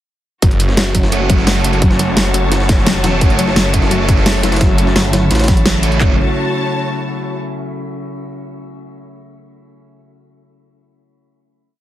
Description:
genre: dark technical drum and bass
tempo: 172 BPM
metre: 4/4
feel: straight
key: F# minor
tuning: A4 = 440 Hz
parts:
  - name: metallic inharmonic drone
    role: sustained chords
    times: 0.9-6.2 s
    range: C#3 to F#4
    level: -22 LUFS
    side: left 1 dB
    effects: chorus, built-in reverb, sidechain pumping
  - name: warbly dusty pluck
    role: arpeggios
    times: 0.4-6.2 s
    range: F#3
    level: -22 LUFS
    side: left 1 dB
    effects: chorus, sidechain pumping, dub echo
  - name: snarling distorted saw bass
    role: bass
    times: 0.4-6.2 s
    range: F#1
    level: -17 LUFS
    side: equal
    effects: distortion, overdrive
  - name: dubstep drum kit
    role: drums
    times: 0.4-6.1 s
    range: handclaps, kick drum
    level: -15 LUFS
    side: equal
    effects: none
  - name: dubstep drum kit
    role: drums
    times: 0.4-5.9 s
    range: hi-hat, snare drum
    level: -17 LUFS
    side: equal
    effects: none
  - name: jungle sampler-style drum kit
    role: drums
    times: 0.4-6.0 s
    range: hi-hat, snare drum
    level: -24 LUFS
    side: equal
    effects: overdrive, high-pass filter on hats, high-pass filter on snare
  - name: clear studio string section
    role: texture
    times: 0.4-7.4 s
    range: F#4 to A5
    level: -23 LUFS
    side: left 1 dB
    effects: sidechain pumping
  - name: fuzz guitar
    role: stabs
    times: 1.1-6.1 s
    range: A3 to F#4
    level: -22 LUFS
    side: right 2 dB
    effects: distortion, dub echo
  - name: pulsing pluck wobble bass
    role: bass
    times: 5.0-6.0 s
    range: G1 to A1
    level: -15 LUFS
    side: equal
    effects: chorus
room: light reverb, digital ambience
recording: heavily compressed radio sound, multiband compression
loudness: -11 LUFS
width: side -13 dB against mid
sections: 0.4-6.0 drop; 6.0-7.4 final chord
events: drop 0.4-6.0; band accent 5.7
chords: 0.4 F#m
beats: | 0.42 0.77 1.12 1.47 | 1.82 2.17 2.52 2.87 | 3.21 3.56 3.91 4.26 | 4.61 4.96 5.31 5.66 | 6.00 6.35 6.70 7.05

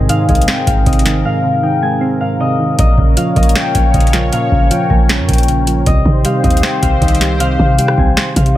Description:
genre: hip hop, trap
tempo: 156 BPM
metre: 4/4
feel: half-time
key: C phrygian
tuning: A4 = 440 Hz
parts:
  - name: Celtic harp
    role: melody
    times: 0.0-8.6 s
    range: Eb5 to Ab5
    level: -18 LUFS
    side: left 5 dB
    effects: low-pass filter
  - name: soft electric-piano-like synth keys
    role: accompaniment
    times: 0.0-8.6 s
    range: Ab2 to C5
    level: -17 LUFS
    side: right 3 dB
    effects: chorus, low-pass filter
  - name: sweeping resonant pad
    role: sustained chords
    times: 0.0-8.6 s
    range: Eb3 to Db5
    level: -23 LUFS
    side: right 1 dB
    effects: wide subtle chorus
  - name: warm 808-style bass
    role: bass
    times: 0.0-8.5 s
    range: Ab1 to C3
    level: -16 LUFS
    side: equal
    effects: none
  - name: booming analog drum machine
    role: drums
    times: 0.1-8.6 s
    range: hi-hat, kick drum, rim click, snare drum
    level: -14 LUFS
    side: equal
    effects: none
room: digital ambience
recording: none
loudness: -10 LUFS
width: side -14 dB against mid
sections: 0.0-8.6 A section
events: break 1.2-2.8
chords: 0.0 Ab; 2.8 Bbm; 5.9 Cm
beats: 0.09 0.48 0.86 | 1.25 1.63 2.02 2.40 | 2.79 3.17 3.56 3.94 | 4.33 4.71 5.09 5.48 | 5.86 6.25 6.63 7.02 | 7.40 7.79 8.17 8.56

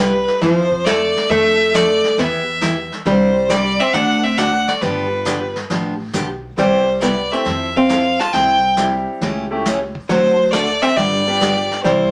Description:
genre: country, western swing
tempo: 136 BPM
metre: 4/4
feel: swing 68% on 8ths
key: C major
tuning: A4 = 440 Hz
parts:
  - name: clear fiddle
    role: melody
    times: 0.0-12.1 s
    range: B4 to A5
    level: -20 LUFS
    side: equal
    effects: none
  - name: archtop guitar, miked and amplified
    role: second line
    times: 0.0-12.1 s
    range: F3 to F4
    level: -21 LUFS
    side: equal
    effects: none
  - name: picked steel-string acoustic guitar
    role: accompaniment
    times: 0.0-12.1 s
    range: C3 to A4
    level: -25 LUFS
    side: equal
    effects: none
  - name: upright bass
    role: bass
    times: 0.0-12.1 s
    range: G1 to F2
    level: -29 LUFS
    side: equal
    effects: none
  - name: vintage brush drum kit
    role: drums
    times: 0.3-12.1 s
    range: brushed snare drum, hi-hat, kick drum, snare drum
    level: -30 LUFS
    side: equal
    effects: none
  - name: bright upright piano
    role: accompaniment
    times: 6.6-11.8 s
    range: G3 to G4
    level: -25 LUFS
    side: equal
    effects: none
room: wet studio reverb, RT60 0.6 s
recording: none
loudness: -17 LUFS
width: mono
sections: 0.0-12.1 A section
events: none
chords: 0.4 Fmaj7; 1.3 Dm/F; 2.2 Em; 3.1 Csus2; 3.9 D7; 4.8 G7; 6.6 Cmaj7; 7.5 Fmaj7; 8.3 C; 9.2 A7/C#; 10.1 D7; 11.0 G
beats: 0.42 0.86 | 1.30 1.74 2.18 2.62 | 3.06 3.50 3.94 4.38 | 4.82 5.26 5.70 6.14 | 6.58 7.01 7.46 7.89 | 8.33 8.77 9.21 9.65 | 10.09 10.53 10.97 11.41 | 11.85

